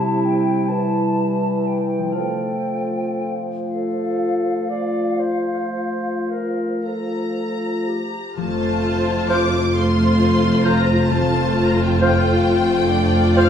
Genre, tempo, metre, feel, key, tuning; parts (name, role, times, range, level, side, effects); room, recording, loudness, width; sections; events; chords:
classical, slow romantic movement for symphony orchestra; 35-45 BPM (dotted quarters); 12/8; rubato; F major; A4 = 441 Hz
mellow hollow small flute group; second line; 0.0-13.5 s; F5 to F6; -28 LUFS; left 2 dB
warm clarinet; second line; 0.0-13.5 s; E4 to D5; -27 LUFS; right 1 dB
mellow bassoon; accompaniment; 0.0-13.5 s; C3 to F3; -25 LUFS; right 1 dB
mellow French horn section; sustained chords; 0.0-13.5 s; G3 to F4; -23 LUFS; left 2 dB
concert harp; arpeggios; 0.0-13.5 s; C3 to G5; -30 LUFS; left 3 dB
warm symphonic violin section; melody; 6.8-13.5 s; F5 to D6; -25 LUFS; left 2 dB
warm symphonic violin section; second line; 8.4-13.5 s; F4 to D5; -25 LUFS; left 4 dB
warm symphonic viola section; accompaniment; 8.4-13.5 s; A3 to F4; -22 LUFS; equal
dark symphonic double bass section; bass; 8.4-13.5 s; F1; -23 LUFS; right 3 dB
rich symphonic cello section; bass; 8.4-13.5 s; F2; -24 LUFS; right 2 dB
wet recital hall reverb, RT60 1.5 s; heard from further back in the room; -17 LUFS; side -8 dB against mid
0.0-8.4 A section; 8.4-13.5 A section
0.0 C; 2.2 F